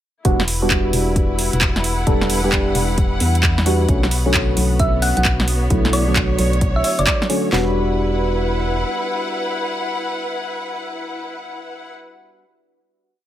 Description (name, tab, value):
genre	UK garage, two-step garage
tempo	132 BPM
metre	4/4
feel	swing 65% on 16ths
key	E minor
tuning	A4 = 440 Hz
part	percussive organ stab	stabs	0.2-12.4 s	D3 to A4	-22 LUFS	equal	wide subtle chorus, dub echo
part	house drum kit	drums	0.2-7.4 s	handclaps, hi-hat, snare drum	-21 LUFS	right 1 dB	none
part	rich studio string section	texture	0.2-11.9 s	B3 to F#5	-25 LUFS	left 1 dB	sidechain pumping
part	organ-like FM bass	bass	0.3-8.8 s	E1 to E2	-20 LUFS	equal	none
part	house drum kit	drums	0.3-7.7 s	handclaps, kick drum, snare drum	-20 LUFS	equal	none
part	thumb-piano-like synth pluck	melody	4.8-7.2 s	D5 to F#5	-24 LUFS	right 1 dB	chorus, dub echo
room	light reverb, digital ambience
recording	none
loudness	-16 LUFS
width	side -12 dB against mid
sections	0.3-7.5 groove; 7.5-11.2 final chord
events	none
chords	0.3 Em7; 3.9 Bm7; 7.5 Em7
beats	| 0.25 0.71 1.16 1.61 | 2.07 2.52 2.98 3.43 | 3.89 4.34 4.80 5.25 | 5.71 6.16 6.62 7.07 | 7.52 7.98 8.43 8.89 | 9.34 9.80 10.25 10.71